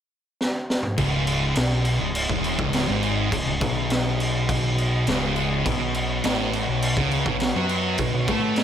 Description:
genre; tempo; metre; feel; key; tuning
stoner and doom metal; 103 BPM; 4/4; straight; unclear; A4 = 437 Hz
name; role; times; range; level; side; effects
raw garage drum kit; drums; 0.4-8.6 s; crash cymbal, kick drum, snare drum, toms; -25 LUFS; equal; none
metallic inharmonic drone; sustained chords; 1.7-8.6 s; B3 to D#5; -34 LUFS; right 1 dB; chorus, built-in reverb
thick fuzz guitar; riff; 1.0-8.6 s; C#2 to A3; -26 LUFS; left 8 dB; distortion
thick fuzz guitar; riff; 1.0-8.6 s; C#2 to A3; -26 LUFS; right 8 dB; distortion
growling picked electric bass; bass; 1.0-8.6 s; C#1 to A2; -30 LUFS; equal; overdrive
room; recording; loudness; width
light reverb; none; -21 LUFS; side -9 dB against mid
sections
1.0-8.6 A section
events
drum fill 0.4-1.0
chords
0.0 N.C.; 1.0 C#m; 5.7 B5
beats
0.39 | 0.98 1.56 2.15 2.73 | 3.32 3.90 4.49 5.07 | 5.66 6.24 6.82 7.41 | 7.99 8.57

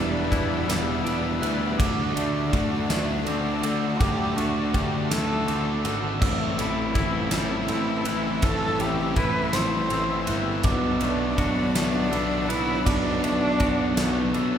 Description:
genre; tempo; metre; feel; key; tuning
post-rock; 54 BPM (dotted quarters); 6/8; straight; unclear; A4 = 440 Hz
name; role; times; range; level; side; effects
warm cello; melody; 0.0-14.3 s; D4 to C5; -29 LUFS; equal; none
evolving wavetable pad; sustained chords; 0.0-14.6 s; G4 to B5; -38 LUFS; equal; none
glockenspiel with soft plastic mallets; arpeggios; 0.0-14.6 s; D6 to F#6; -35 LUFS; right 4 dB; none
twangy electric guitar; arpeggios; 0.0-14.6 s; E2 to F#4; -34 LUFS; left 3 dB; none
distorted electric guitar; riff; 0.0-14.6 s; A2 to F#4; -30 LUFS; left 6 dB; distortion
fuzz guitar; riff; 0.0-14.6 s; A2 to F#4; -30 LUFS; right 6 dB; distortion
fuzz picked electric bass; bass; 0.0-14.6 s; E1 to D2; -28 LUFS; equal; overdrive
huge arena drum kit; drums; 0.3-14.5 s; crash cymbal, kick drum, ride cymbal, snare drum; -28 LUFS; equal; none
room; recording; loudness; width
wet recital hall reverb, RT60 1.6 s; recorded in a church or concert hall; -22 LUFS; side -9 dB against mid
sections
0.0-14.6 A section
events
none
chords
0.0 Em7; 1.8 D5; 6.2 Am7; 10.6 Bm7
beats
0.68 | 1.79 2.90 | 4.00 5.11 | 6.22 7.33 | 8.43 9.54 | 10.65 11.76 | 12.87 13.98

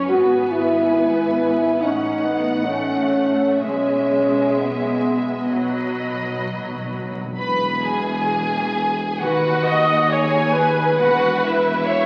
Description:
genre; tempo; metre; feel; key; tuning
classical; 62-72 BPM; 4/4; rubato; E major; A4 = 441 Hz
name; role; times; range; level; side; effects
rich studio violin section; melody; 0.0-12.1 s; E5 to B5; -30 LUFS; equal; none
warm studio violin section; second line; 0.0-12.1 s; E4 to F#5; -30 LUFS; equal; none
rich studio viola section; accompaniment; 0.0-12.1 s; F#3 to D#5; -24 LUFS; equal; none
clear studio double bass section; bass; 0.0-12.1 s; E1 to D#2; -38 LUFS; equal; none
rich studio cello section; bass; 0.0-12.1 s; D#2 to B2; -35 LUFS; equal; none
mellow French horn section; sustained chords; 0.1-6.4 s; B3 to F#4; -21 LUFS; equal; none
timpani; percussion; 3.6-7.3 s; B2; -37 LUFS; equal; none
mellow tuba; bass; 7.4-12.1 s; E1 to D#2; -28 LUFS; equal; none
room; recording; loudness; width
wet scoring stage reverb, RT60 1.9 s; very old 78 rpm record, vinyl crackle; -20 LUFS; mono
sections
0.0-7.4 A section; 7.4-12.1 B section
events
timpani fill 5.5-7.4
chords
0.1 E/G#; 1.8 F#m/A; 3.6 E/B; 5.5 B; 7.4 E; 9.2 B69/D#; 11.0 E5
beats
| 0.09 0.95 1.80 2.67 | 3.60 4.56 5.51 6.44 | 7.39 8.30 9.22 10.11 | 11.00 11.90

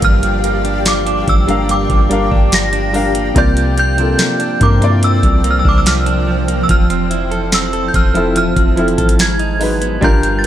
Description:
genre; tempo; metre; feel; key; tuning
contemporary R&B; 72 BPM; 4/4; straight; G dorian; A4 = 440 Hz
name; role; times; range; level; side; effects
synth chime; melody; 0.0-10.4 s; D6 to Bb6; -19 LUFS; right 1 dB; ensemble chorus, digital delay
warm concert grand piano; accompaniment; 0.0-10.5 s; C3 to G5; -19 LUFS; left 2 dB; none
granular cloud pad; sustained chords; 0.0-10.5 s; F3 to A5; -21 LUFS; left 1 dB; built-in reverb
direct-recorded clean electric guitar; arpeggios; 0.0-10.5 s; G2 to A4; -21 LUFS; right 6 dB; none
soft 808-style bass; bass; 0.0-10.5 s; F1 to G2; -18 LUFS; equal; none
booming analog drum machine; drums; 0.0-10.5 s; hi-hat, kick drum, snare drum; -15 LUFS; equal; none
downlifter; sound effects; 0.0-3.4 s; none; -38 LUFS; left 1 dB; none
room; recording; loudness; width
digital ambience; none; -11 LUFS; side -11 dB against mid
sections
0.0-10.5 A section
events
none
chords
0.0 Gm7; 3.4 C9sus4; 6.7 Fmaj7; 9.2 Abm7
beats
| 0.02 0.86 1.69 2.52 | 3.36 4.19 5.02 5.86 | 6.69 7.52 8.36 9.19 | 10.02

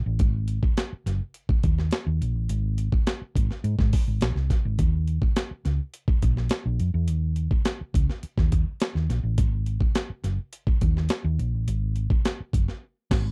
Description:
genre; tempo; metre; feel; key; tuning
funk; 105 BPM; 4/4; straight; unclear; A4 = 445 Hz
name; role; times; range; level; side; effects
hollow-body short-scale fingered electric bass; bass; 0.0-13.3 s; Gb1 to Ab2; -27 LUFS; equal; none
breakbeat sampler-style drum kit; drums; 0.2-13.3 s; crash cymbal, hi-hat, kick drum, snare drum; -26 LUFS; equal; none
room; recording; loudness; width
little or no reverb; dry, close 1970s-style studio recording; -25 LUFS; mono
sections
0.0-13.3 A section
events
band accent 12.8-13.3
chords
none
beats
| 0.20 0.77 1.34 1.92 | 2.49 3.07 3.64 4.21 | 4.79 5.36 5.94 6.51 | 7.08 7.66 8.23 8.80 | 9.38 9.95 10.53 11.10 | 11.67 12.25 12.82

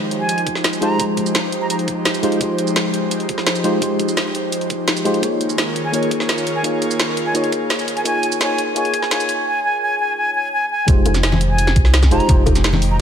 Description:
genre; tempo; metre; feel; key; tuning
liquid drum and bass; 170 BPM; 4/4; straight; F minor; A4 = 441 Hz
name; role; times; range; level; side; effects
mellow FM electric piano; accompaniment; 0.0-13.0 s; Ab3 to Db5; -22 LUFS; equal; chorus, tape echo
airy breathy pad; sustained chords; 0.0-13.0 s; Eb3 to Db5; -24 LUFS; equal; chorus, sidechain pumping
drum and bass drum kit; drums; 0.1-12.9 s; hi-hat, shaker, snare drum; -21 LUFS; equal; overdrive
bright concert flute; melody; 0.2-1.8, 5.8-13.0 s; Ab5 to Bb5; -22 LUFS; equal; tape echo
electronic kick drum; drums; 0.5-12.5 s; none; -17 LUFS; equal; overdrive, high-pass filter on kick
warm sub bass; bass; 10.9-13.0 s; F1 to C2; -16 LUFS; equal; tube saturation
bongos and congas; percussion; 11.1-12.8 s; none; -23 LUFS; left 4 dB; none
room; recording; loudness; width
moderate lush hall reverb, RT60 2.0 s, digital ambience; high-pass filter; -15 LUFS; side -8 dB against mid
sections
0.0-10.9 A section; 10.9-13.0 B section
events
build-up 0.0-10.9; drop 10.9-13.0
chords
0.0 Fm9; 5.2 Eb9sus4; 10.7 N.C.; 10.9 Fm9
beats
0.29 0.64 | 1.00 1.35 1.70 2.06 | 2.41 2.76 3.11 3.47 | 3.82 4.17 4.53 4.88 | 5.23 5.58 5.94 6.29 | 6.64 7.00 7.35 7.70 | 8.05 8.41 8.76 9.11 | 9.47 9.82 10.17 10.53 | 10.88 11.23 11.59 11.94 | 12.29 12.64 13.00

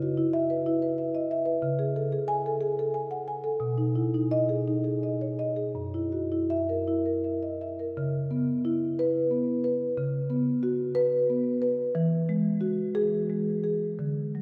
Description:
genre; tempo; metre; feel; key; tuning
classical, contemporary piece for solo marimba; 53-63 BPM (dotted quarters); 6/8; rubato; C# minor; A4 = 440 Hz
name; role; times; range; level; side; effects
marimba with soft mallets; solo; 0.0-14.4 s; F#2 to G#5; -28 LUFS; equal; none
room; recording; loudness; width
wet cathedral reverb, RT60 4.7 s; recorded in a church or concert hall; -28 LUFS; mono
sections
0.0-8.0 A section; 8.0-14.4 B section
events
none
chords
0.0 C#m7; 1.6 Amaj7/C#; 3.6 B6; 5.7 F#7; 8.0 C#m7; 10.0 C#7sus4; 11.9 Eadd9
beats
0.66 | 1.62 2.60 | 3.61 4.66 | 5.75 6.87 | 7.97 8.99 | 9.98 10.96 | 11.95 12.95 | 13.99

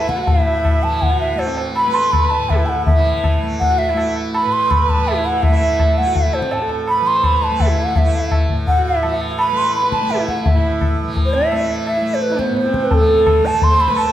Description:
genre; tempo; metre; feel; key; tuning
indian classical, Hindustani; 166 BPM; 7/4; straight; A raga shivaranjani; A4 = 440 Hz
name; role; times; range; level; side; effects
hollow bansuri; melody; 0.0-14.1 s; A4 to C6; -17 LUFS; right 1 dB; none
rich sarangi; second line; 0.0-14.1 s; A3 to C5+21c; -24 LUFS; right 4 dB; none
tanpura; drone; 0.0-14.1 s; A2 to A3; -25 LUFS; equal; none
tabla; percussion; 0.0-14.1 s; none; -18 LUFS; left 2 dB; none
room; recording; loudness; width
wet recital hall reverb, RT60 1.6 s; none; -14 LUFS; side -12 dB against mid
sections
0.0-12.9 A section; 12.9-14.1 B section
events
speeding up 0.0-14.1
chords
none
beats
| 0.27 0.65 1.02 1.39 1.76 2.13 2.50 | 2.87 3.23 3.60 3.97 4.33 4.70 5.06 | 5.43 5.79 6.15 6.51 6.88 7.24 7.60 | 7.96 8.31 8.67 9.03 9.39 9.74 10.10 | 10.45 10.81 11.16 11.51 11.87 12.22 12.57 | 12.92 13.27 13.62 13.96

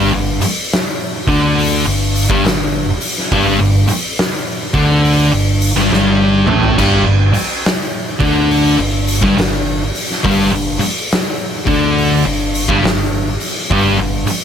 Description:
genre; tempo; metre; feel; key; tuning
stoner and doom metal; 69 BPM; 4/4; swing 64% on 8ths; unclear; A4 = 441 Hz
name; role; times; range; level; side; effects
thick fuzz guitar; riff; 0.0-14.3 s; G2 to D4; -16 LUFS; left 7 dB; distortion
thick fuzz guitar; riff; 0.0-14.3 s; G2 to D4; -16 LUFS; right 7 dB; distortion
modern bright picked electric bass; bass; 0.0-14.3 s; G1 to D2; -19 LUFS; equal; overdrive
oversized low-tuned drum kit; drums; 0.4-14.4 s; crash cymbal, hi-hat, kick drum, snare drum, toms; -18 LUFS; equal; none
room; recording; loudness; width
light reverb; none; -12 LUFS; side -8 dB against mid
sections
0.0-14.4 A section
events
drum fill 5.9-6.8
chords
0.0 G5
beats
0.72 1.58 2.45 | 3.31 4.18 5.05 5.92 | 6.78 7.65 8.51 9.38 | 10.25 11.11 11.98 12.84 | 13.71

